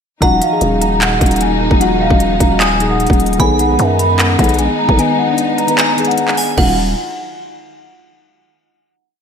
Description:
hip hop, trap; 151 BPM; 4/4; half-time; Eb minor; A4 = 439 Hz
large celesta; melody; 0.2-6.8 s; F5 to B5; -18 LUFS; left 1 dB; wide subtle chorus, analog delay
glassy synth bell; second line; 0.2-6.8 s; Gb5 to Eb6; -22 LUFS; right 3 dB; chorus, tremolo, analog delay
soft electric-piano-like synth keys; accompaniment; 0.2-6.8 s; D#3 to B4; -19 LUFS; left 2 dB; chorus
warm symphonic string section; sustained chords; 0.2-6.8 s; Eb3 to F4; -22 LUFS; equal
growling 808-style bass; bass; 0.2-6.9 s; Eb1 to F#2; -16 LUFS; equal
trap drum kit; drums; 0.2-6.7 s; crash cymbal, handclaps, hi-hat, kick drum; -16 LUFS; equal
moderate lush hall reverb, RT60 2.2 s; dreamy mix soaked in reverb; -11 LUFS; side -7 dB against mid
0.2-6.6 hook; 6.6-8.2 final chord
kick muted 5.0-6.6
0.2 Ebmadd9; 3.4 B6; 6.6 Ebmadd9

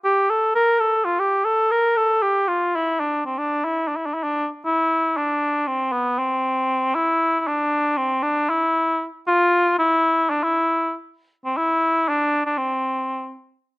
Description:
turkish; free time; D makam ussak; A4 = 441 Hz
mellow cor anglais; solo; 0.0-13.4 s; B3 to Bb4; -18 LUFS; equal; slapback echo
little or no reverb; recorded outdoors, with no room sound; -18 LUFS; side -22 dB against mid
0.0-4.6 A section; 4.6-13.8 B section

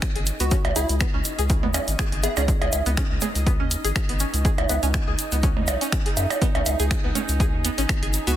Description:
minimal techno; 122 BPM; 4/4; swing 55% on 16ths; A4 = 440 Hz
electronic kick drum; drums; 0.0-8.0 s; -24 LUFS; equal; overdrive
punchy analog drum machine; drums; 0.0-8.4 s; finger snaps, hi-hat; -29 LUFS; right 1 dB; overdrive, soft clipping on snare
tube shaker; percussion; 0.0-8.4 s; -32 LUFS; left 2 dB
bubbling stepped-filter texture; texture; 0.0-8.4 s; D#4 to D#5; -34 LUFS; right 2 dB; chorus, built-in reverb, sidechain pumping
string-like resonator pluck; riff; 0.2-8.3 s; B3 to G#4; -31 LUFS; equal; chorus, phaser, sidechain pumping, dub echo
round analog bass; bass; 0.2-8.4 s; G#1 to F#2; -25 LUFS; equal; sidechain pumping
plucky unison lead; melody; 0.4-2.4, 8.3-8.4 s; E4 to G#4; -33 LUFS; left 2 dB; dub echo
percussion blips and woodblock; percussion; 0.6-7.3 s; -27 LUFS; right 2 dB
light reverb; dense, heavily limited modern master; -20 LUFS; side -12 dB against mid
0.0-8.4 A section
0.0 C#5

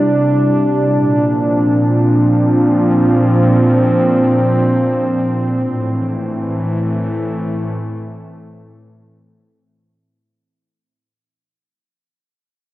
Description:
ambient; free time; A4 = 440 Hz
warm analog pad; solo; 0.0-10.3 s; A2 to E4; -13 LUFS; equal; chorus, tape echo
wet lush hall reverb, RT60 2.5 s; worn, warbling old tape, cassette tape, warbly pitch drift; -12 LUFS; side -16 dB against mid
0.0-10.2 A section
fade-out 4.0-10.2
0.0 C; 0.9 Bbadd9; 5.6 Am

